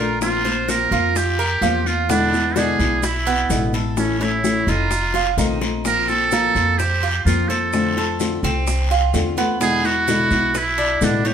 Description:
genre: latin, Cuban son and guajira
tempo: 128 BPM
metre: 4/4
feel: straight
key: unclear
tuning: A4 = 442 Hz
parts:
  - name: trumpet with metal mute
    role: melody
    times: 0.0-11.3 s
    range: C#4 to Bb4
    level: -20 LUFS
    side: right 4 dB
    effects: none
  - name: flamenco guitar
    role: accompaniment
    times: 0.0-11.3 s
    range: B2 to F4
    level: -22 LUFS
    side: left 3 dB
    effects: none
  - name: Cuban tres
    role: arpeggios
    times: 0.0-11.3 s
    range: Bb3 to C#5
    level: -24 LUFS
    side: right 4 dB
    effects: none
  - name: upright bass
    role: bass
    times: 0.0-11.3 s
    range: F1 to F2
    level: -24 LUFS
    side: equal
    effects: none
  - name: bongos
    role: percussion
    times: 0.2-11.3 s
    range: none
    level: -30 LUFS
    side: left 5 dB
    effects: none
  - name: guiro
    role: percussion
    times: 0.2-11.3 s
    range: none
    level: -30 LUFS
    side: left 4 dB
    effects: none
  - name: maracas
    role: percussion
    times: 0.2-11.3 s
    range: none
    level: -34 LUFS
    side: right 6 dB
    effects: none
room: moderate studio reverb, RT60 0.8 s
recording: band playing live in one room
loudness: -16 LUFS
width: side -8 dB against mid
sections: 0.0-5.9 A section; 5.9-11.3 B section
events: drum fill 5.1-5.9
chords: 0.2 Bbsus2; 2.1 E7; 4.0 A; 4.9 F7; 5.9 Bbsus2; 7.7 F6; 9.6 E7

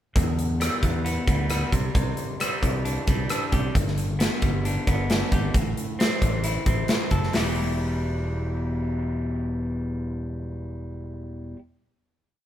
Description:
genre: quiet-loud alternative rock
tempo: 134 BPM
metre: 4/4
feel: straight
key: E minor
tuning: A4 = 436 Hz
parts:
  - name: electric guitar through a small old amp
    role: arpeggios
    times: 0.2-11.6 s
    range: E2 to A4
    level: -30 LUFS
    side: left 1 dB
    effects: none
  - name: fretless electric bass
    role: bass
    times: 0.2-11.5 s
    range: E1 to E2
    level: -28 LUFS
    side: equal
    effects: none
  - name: big rock drum kit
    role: drums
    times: 0.2-7.4 s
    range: hi-hat, kick drum, rim click, snare drum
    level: -24 LUFS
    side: equal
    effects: none
room: light reverb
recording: band playing live in one room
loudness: -22 LUFS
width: side -11 dB against mid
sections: 0.2-7.3 verse; 7.3-10.9 final chord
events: none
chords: 0.2 Em; 1.7 Cadd9; 3.8 G; 5.5 Am; 7.3 Em

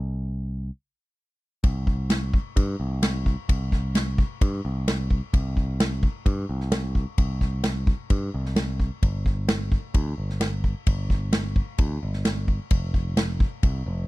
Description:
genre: indie folk with a building arrangement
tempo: 130 BPM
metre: 4/4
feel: straight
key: unclear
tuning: A4 = 442 Hz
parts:
  - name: picked electric bass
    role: bass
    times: 0.0-14.1 s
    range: F1 to G2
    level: -27 LUFS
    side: equal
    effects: none
  - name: unplugged drum kit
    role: drums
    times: 1.6-13.7 s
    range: kick drum, ride cymbal, snare drum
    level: -23 LUFS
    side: equal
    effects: none
room: little or no reverb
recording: dry, close 1970s-style studio recording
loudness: -22 LUFS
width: side -19 dB against mid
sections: 0.0-1.6 A section; 1.6-14.1 B section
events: break 0.7-1.6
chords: none

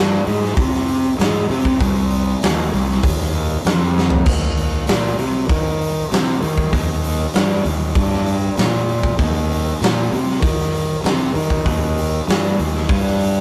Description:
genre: stoner and doom metal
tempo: 97 BPM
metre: 4/4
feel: straight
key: unclear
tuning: A4 = 441 Hz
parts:
  - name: fuzz fingered electric bass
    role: bass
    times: 0.0-13.4 s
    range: C2 to Eb3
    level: -21 LUFS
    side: equal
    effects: overdrive
  - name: big rock drum kit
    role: drums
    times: 0.3-13.3 s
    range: crash cymbal, hi-hat, kick drum, snare drum, toms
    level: -21 LUFS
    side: equal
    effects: none
room: light reverb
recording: rough rehearsal-room recording, warm saturation, lossy compression artefacts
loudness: -18 LUFS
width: mono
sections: 0.0-13.4 A section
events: drum fill 4.0-4.3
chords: none

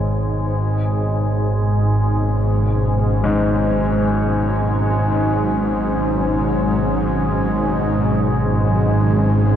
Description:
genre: dark ambient drone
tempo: free time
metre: none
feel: none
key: G# minor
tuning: A4 = 441 Hz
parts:
  - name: granular cloud pad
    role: sustained chords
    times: 0.3-9.6 s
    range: G#2 to C#4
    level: -24 LUFS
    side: right 1 dB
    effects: built-in reverb
  - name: organ-like drone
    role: drone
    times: 0.0-9.6 s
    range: G#1 to G#2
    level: -17 LUFS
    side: equal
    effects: ensemble chorus, built-in reverb
  - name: bronze singing bowl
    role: texture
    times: 0.0-9.6 s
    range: C#5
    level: -40 LUFS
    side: right 5 dB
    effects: none
  - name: clear baby grand piano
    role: arpeggios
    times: 3.2-9.6 s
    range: G#2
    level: -24 LUFS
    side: left 2 dB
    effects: diffuse ambient delay
room: wet cathedral reverb, RT60 5.7 s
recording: worn, warbling old tape, cassette tape, warbly pitch drift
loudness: -16 LUFS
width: side -9 dB against mid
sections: 0.0-9.6 A section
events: fade-in on ambient pad 0.0-9.6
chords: 0.0 G#m7

